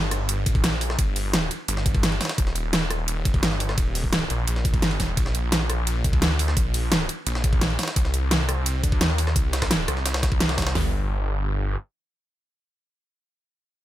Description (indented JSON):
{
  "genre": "dark technical drum and bass",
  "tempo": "172 BPM",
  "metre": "4/4",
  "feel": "straight",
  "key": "unclear",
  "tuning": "A4 = 440 Hz",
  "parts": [
    { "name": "snarling distorted saw bass", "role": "bass", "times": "0.0-11.8 s", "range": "Eb1 to Eb2", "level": "-25 LUFS", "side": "equal", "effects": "tube saturation, sidechain pumping" },
    { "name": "dubstep drum kit", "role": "drums", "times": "0.1-10.6 s", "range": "hi-hat, rim click, snare drum", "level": "-24 LUFS", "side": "equal", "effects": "overdrive" },
    { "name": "jungle sampler-style drum kit", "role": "drums", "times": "0.1-10.7 s", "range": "hi-hat, ride cymbal, snare drum", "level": "-32 LUFS", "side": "equal", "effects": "high-pass filter on cymbals, high-pass filter on snare, high-pass filter on hats" },
    { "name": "dubstep drum kit", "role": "drums", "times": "0.5-10.8 s", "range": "hi-hat, kick drum, snare drum, toms", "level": "-23 LUFS", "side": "equal", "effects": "overdrive" }
  ],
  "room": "little or no reverb",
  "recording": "none",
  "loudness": "-21 LUFS",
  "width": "side -13 dB against mid",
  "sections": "0.0-10.8 A section; 10.8-13.5 B section",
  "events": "drop 0.0-10.8",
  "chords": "none",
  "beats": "0.29 0.64 | 0.99 1.33 1.68 2.03 | 2.38 2.73 3.08 3.43 | 3.78 4.13 4.47 4.82 | 5.17 5.52 5.87 6.22 | 6.57 6.92 7.26 7.61 | 7.96 8.31 8.66 9.01 | 9.36 9.71 10.06 10.40 | 10.75 11.10 11.45"
}